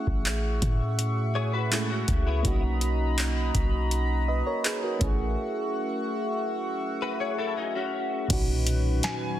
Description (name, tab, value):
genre	contemporary R&B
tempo	82 BPM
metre	4/4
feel	straight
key	B major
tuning	A4 = 444 Hz
part	mellow FM electric piano	accompaniment	0.0-9.4 s	A#2 to D#5	-32 LUFS	right 2 dB	chorus
part	chorused pulse-width pad	sustained chords	0.0-9.4 s	D#3 to C#6	-33 LUFS	left 1 dB	none
part	warm 808-style bass	bass	0.1-9.0 s	A1 to A2	-27 LUFS	equal	none
part	booming analog drum machine	drums	0.1-9.2 s	crash cymbal, handclaps, hi-hat, kick drum, snare drum	-28 LUFS	equal	none
part	direct-recorded clean electric guitar	arpeggios	1.4-2.6, 7.0-8.3 s	B3 to C#5	-32 LUFS	left 6 dB	ensemble chorus, tape echo
part	warm grand piano	melody	9.0-9.4 s	G#5	-32 LUFS	equal	none
room	light reverb, digital ambience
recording	dense, heavily limited modern master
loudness	-24 LUFS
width	side -12 dB against mid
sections	0.0-8.3 A section; 8.3-9.4 B section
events	break 5.4-8.3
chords	0.0 F#m7/A; 2.4 Bmaj7; 5.0 F#m7/A; 8.3 Bmaj7